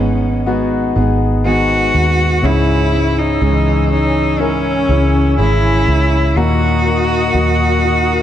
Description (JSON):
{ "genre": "pop ballad", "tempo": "61 BPM", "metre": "4/4", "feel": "straight", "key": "G# minor", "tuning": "A4 = 440 Hz", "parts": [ { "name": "clear cello", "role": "melody", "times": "0.0-8.2 s", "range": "C#4 to F#4", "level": "-17 LUFS", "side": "equal", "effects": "none" }, { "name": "warm concert grand piano", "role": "accompaniment", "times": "0.0-8.2 s", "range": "G#2 to A#4", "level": "-18 LUFS", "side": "left 5 dB", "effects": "none" }, { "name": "fingerpicked steel-string acoustic guitar", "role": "arpeggios", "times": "0.0-8.2 s", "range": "G#2 to A#4", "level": "-23 LUFS", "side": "right 7 dB", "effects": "none" }, { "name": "vintage muted fingered electric bass", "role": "bass", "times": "0.0-8.2 s", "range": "G#1 to D#2", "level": "-16 LUFS", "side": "right 1 dB", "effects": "none" }, { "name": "airy breathy pad", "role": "sustained chords", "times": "2.8-8.2 s", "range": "A#4 to E6", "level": "-24 LUFS", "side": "right 1 dB", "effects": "chorus" } ], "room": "light reverb, small room ambience", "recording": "dark, warm production", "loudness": "-12 LUFS", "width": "side -10 dB against mid", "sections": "0.0-8.2 A section", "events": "none", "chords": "0.0 G#m; 2.4 C#m; 6.4 D#m" }